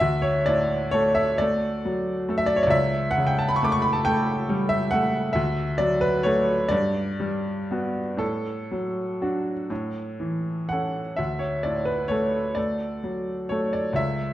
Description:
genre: classical, romantic nocturne for solo piano.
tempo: 40-47 BPM (dotted quarters).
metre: 6/8.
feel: rubato.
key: D major.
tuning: A4 = 440 Hz.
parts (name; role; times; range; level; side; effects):
bright upright piano; solo; 0.0-14.3 s; C#2 to D6; -22 LUFS; equal; none.
room: wet recital hall reverb, RT60 1.2 s.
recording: dark, warm production.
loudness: -22 LUFS.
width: side -13 dB against mid.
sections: 0.0-14.3 A section.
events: none.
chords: 0.0 D; 2.7 A7/C#; 5.4 D; 6.7 Gmaj7; 8.2 D/A; 9.7 A; 11.2 D.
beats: | 0.02 1.40 | 2.73 4.06 | 5.35 6.72 | 8.20 9.70 | 11.18 12.57 | 13.97.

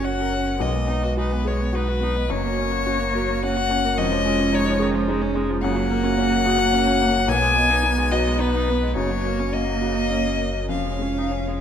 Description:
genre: neoclassical piano and strings.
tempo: 107 BPM.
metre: 3/4.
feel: rubato.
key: F# major.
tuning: A4 = 440 Hz.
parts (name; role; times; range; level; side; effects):
rich violin; melody; 0.0-11.6 s; B4 to G#5; -23 LUFS; left 6 dB; none.
dark cello; second line; 0.0-11.6 s; G#3 to C#4; -27 LUFS; right 4 dB; none.
felt-muted upright piano; accompaniment; 0.0-11.6 s; B1 to A#4; -28 LUFS; left 5 dB; none.
rich viola; accompaniment; 0.0-11.6 s; C#3 to A#4; -29 LUFS; right 2 dB; none.
marimba with medium mallets; arpeggios; 0.0-11.5 s; C#4 to G#5; -28 LUFS; right 4 dB; none.
sub bass with octave; bass; 0.0-11.6 s; E#1 to B1; -27 LUFS; equal; none.
room: moderate scoring stage reverb, RT60 1.5 s.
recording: minimal, uncompressed stereo recording.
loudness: -19 LUFS.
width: side -8 dB against mid.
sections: 0.0-11.6 A section.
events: none.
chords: 0.0 F#; 0.6 B6; 2.3 F#; 4.0 C#add9/E#; 5.6 F#; 7.3 B6; 9.0 F#; 10.7 C#add9/E#.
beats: 0.05 | 0.61 1.18 1.74 | 2.30 2.86 3.42 | 3.98 4.53 5.07 | 5.62 6.17 6.73 | 7.28 7.84 8.40 | 8.96 9.53 10.11 | 10.70 11.31.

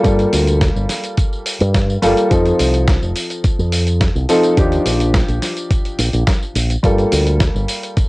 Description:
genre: nu-disco, nu disco.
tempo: 106 BPM.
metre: 4/4.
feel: straight.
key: G minor.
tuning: A4 = 438 Hz.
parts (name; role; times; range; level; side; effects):
dark baby grand piano; accompaniment; 0.0-8.1 s; F3 to A4; -18 LUFS; equal; sidechain pumping, low-pass filter, analog delay.
fingered electric bass with an envelope filter; bass; 0.0-8.0 s; F1 to G2; -16 LUFS; equal; none.
dusty soul sampler-style drum kit; drums; 0.0-8.1 s; hi-hat, snare drum, tambourine; -22 LUFS; equal; cassette tape.
electronic kick drum; drums; 0.0-8.1 s; none; -16 LUFS; equal; cassette tape.
room: light reverb.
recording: home recording on cassette.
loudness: -13 LUFS.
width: side -22 dB against mid.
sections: 0.0-8.1 A section.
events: none.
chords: 0.0 Gm9; 2.3 F7; 4.6 Ebmaj9; 6.8 Gm9.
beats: | 0.05 0.61 1.18 1.75 | 2.31 2.88 3.44 4.01 | 4.58 5.14 5.71 6.27 | 6.84 7.41 7.97.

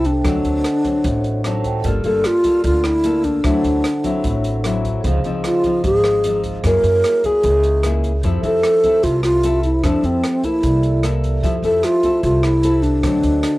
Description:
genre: bossa nova.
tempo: 150 BPM.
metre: 4/4.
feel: straight.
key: F major.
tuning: A4 = 440 Hz.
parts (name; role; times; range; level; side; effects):
breathy mellow wooden-headed alto flute; melody; 0.0-13.6 s; C4 to Bb4; -16 LUFS; equal; none.
nylon-string guitar; accompaniment; 0.0-13.6 s; Ab2 to A4; -25 LUFS; left 5 dB; none.
vibraphone with soft mallets; accompaniment; 0.0-13.6 s; F#4 to F6; -27 LUFS; right 5 dB; none.
upright bass; bass; 0.0-13.4 s; G1 to Gb2; -20 LUFS; equal; none.
open jazz drum kit; drums; 0.0-13.5 s; hi-hat, kick drum, rim click; -27 LUFS; equal; cassette tape.
room: light reverb.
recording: home recording on cassette.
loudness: -15 LUFS.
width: side -18 dB against mid.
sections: 0.0-11.4 A section; 11.4-13.6 A section.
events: vibraphone fill 1.2-1.8.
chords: 0.2 D7b9; 1.8 Gm9; 3.4 D9; 5.0 Dbmaj9; 6.6 Gb9; 8.2 Fmaj7; 10.6 C13; 11.4 Fmaj7; 13.0 D7b9.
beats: | 0.24 0.64 1.04 1.44 | 1.84 2.24 2.64 3.04 | 3.44 3.84 4.24 4.64 | 5.04 5.44 5.84 6.24 | 6.64 7.04 7.44 7.84 | 8.24 8.64 9.04 9.44 | 9.84 10.23 10.63 11.03 | 11.43 11.83 12.23 12.63 | 13.03 13.43.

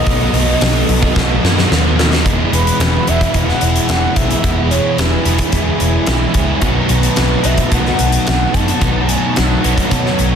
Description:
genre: rock, shoegaze and dream pop.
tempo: 110 BPM.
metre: 4/4.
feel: straight.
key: E major.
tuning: A4 = 440 Hz.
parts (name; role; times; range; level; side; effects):
mellow horn-like synth lead; melody; 0.0-9.9 s; B4 to A5; -22 LUFS; right 1 dB; chorus, phaser, analog delay.
chorused pulse-width pad; sustained chords; 0.0-10.4 s; B3 to A5; -24 LUFS; equal; phaser.
crunchy overdriven guitar; riff; 0.0-10.4 s; E2 to F#4; -21 LUFS; right 11 dB; reverse reverb.
distorted electric guitar; riff; 0.0-10.4 s; B2 to E4; -21 LUFS; equal; distortion.
thick fuzz guitar; riff; 0.0-10.4 s; E2 to B3; -21 LUFS; left 10 dB; distortion, ensemble chorus.
vintage muted picked electric bass; bass; 0.1-10.4 s; E1 to B2; -17 LUFS; equal; none.
huge arena drum kit; drums; 0.1-10.3 s; hi-hat, kick drum, snare drum; -17 LUFS; equal; none.
room: studio ambience.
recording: dense, heavily limited modern master.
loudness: -12 LUFS.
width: side -7 dB against mid.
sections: 0.0-2.3 A section; 2.3-10.4 B section.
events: drum fill 1.2-2.3.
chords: 0.0 B7; 2.3 Eadd9; 6.6 B7.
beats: | 0.07 0.61 1.16 1.71 | 2.26 2.80 3.35 3.90 | 4.44 4.99 5.54 6.08 | 6.63 7.18 7.72 8.27 | 8.82 9.36 9.91.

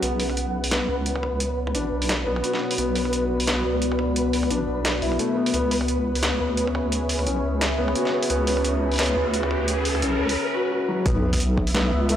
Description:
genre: half-time drum and bass.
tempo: 174 BPM.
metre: 4/4.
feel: swing 57% on 16ths, half-time.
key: B minor.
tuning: A4 = 440 Hz.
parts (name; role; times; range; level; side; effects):
deep dark ambient pad; sustained chords; 0.0-12.2 s; B3 to E5; -28 LUFS; left 2 dB; chorus, built-in reverb, vintage 12-bit sampler grit, sidechain pumping.
felt-muted upright piano; arpeggios; 0.0-12.2 s; F#3 to B4; -26 LUFS; left 1 dB; analog delay.
deep soft wobble bass; bass; 0.0-12.2 s; A1 to D2; -26 LUFS; equal; chorus.
boom bap sampler-style drum kit; drums; 0.0-12.2 s; hi-hat, snare drum, toms; -27 LUFS; right 1 dB; high-pass filter on toms, studio reverb, high-pass filter on hats, high-pass filter on snare.
swell, riser and sub drop; sound effects; 0.0, 7.0-12.2 s; none; -31 LUFS; left 1 dB; none.
flickering grainy texture; texture; 0.0-12.2 s; B4 to E5; -32 LUFS; equal; built-in reverb.
electronic kick drum; drums; 11.1-11.7 s; none; -24 LUFS; equal; studio reverb.
room: moderate echo chamber reverb, RT60 1.9 s, digital ambience.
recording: dry, gritty hardware recording, cassette tape.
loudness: -21 LUFS.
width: side -10 dB against mid.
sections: 0.0-11.1 A section; 11.1-12.2 B section.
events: build-up 0.0-11.1; riser 7.0-10.4; drop 11.1-12.2; impact 11.1-12.2.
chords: 0.0 Bm; 5.5 C#m; 11.1 Bm.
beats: | 0.02 0.37 0.71 1.06 | 1.40 1.75 2.09 2.44 | 2.78 3.13 3.47 3.82 | 4.16 4.51 4.85 5.20 | 5.54 5.89 6.23 6.58 | 6.92 7.26 7.61 7.96 | 8.30 8.64 8.99 9.33 | 9.68 10.02 10.37 10.71 | 11.06 11.40 11.75 12.09.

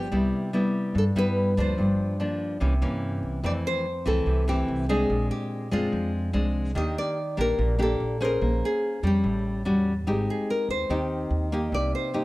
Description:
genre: bossa nova.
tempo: 145 BPM.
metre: 4/4.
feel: straight.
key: C major.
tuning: A4 = 440 Hz.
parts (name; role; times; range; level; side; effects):
nylon-string guitar; melody; 0.0-12.2 s; F4 to Eb5; -29 LUFS; equal; none.
nylon-string guitar; accompaniment; 0.0-12.2 s; F2 to C5; -26 LUFS; left 1 dB; none.
upright bass; bass; 0.0-11.9 s; G1 to G2; -28 LUFS; right 1 dB; none.
room: small room reverb.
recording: dry, close 1970s-style studio recording.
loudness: -23 LUFS.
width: side -19 dB against mid.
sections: 0.0-3.4 A section; 3.4-12.2 B section.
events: none.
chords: 0.1 Cmaj7; 1.8 Gm7; 2.6 C7b9; 3.4 Fmaj7; 5.1 Bb9; 6.8 Ebmaj7; 8.4 Bbm9; 9.2 A6; 10.1 Abmaj7; 11.7 Cm7.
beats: | 0.12 0.53 0.95 1.36 | 1.78 2.19 2.61 3.02 | 3.44 3.85 4.27 4.68 | 5.10 5.51 5.93 6.34 | 6.76 7.17 7.59 8.00 | 8.41 8.83 9.24 9.66 | 10.07 10.49 10.90 11.31 | 11.73 12.14.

